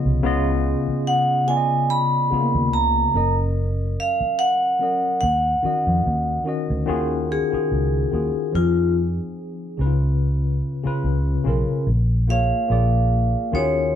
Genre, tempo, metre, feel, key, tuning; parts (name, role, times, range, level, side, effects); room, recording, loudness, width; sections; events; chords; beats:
lush 1970s-style soul; 72 BPM; 4/4; swing 54% on 16ths; Eb minor; A4 = 435 Hz
tine electric piano; accompaniment; 0.0-14.0 s; Db3 to Eb5; -24 LUFS; left 2 dB; medium stereo tremolo
vintage muted fingered electric bass; bass; 0.1-14.0 s; Gb1 to F2; -22 LUFS; equal
vibraphone with medium hard mallets; melody; 1.1-13.9 s; F4 to Cb6; -21 LUFS; equal
wet studio reverb, RT60 0.7 s; band playing live in one room; -18 LUFS; side -9 dB against mid
0.0-6.9 A section; 6.9-14.0 B section
vibraphone solo 6.9-14.0
0.0 Db9; 3.1 Gb6; 5.2 Ebm7; 6.9 Ebm11; 8.5 Fm7; 9.8 Db7; 11.9 Bbm7; 12.7 Bb7
| 0.24 1.07 1.90 2.73 | 3.56 4.39 5.22 6.05 | 6.88 7.71 8.54 9.37 | 10.21 11.04 11.87 12.70 | 13.53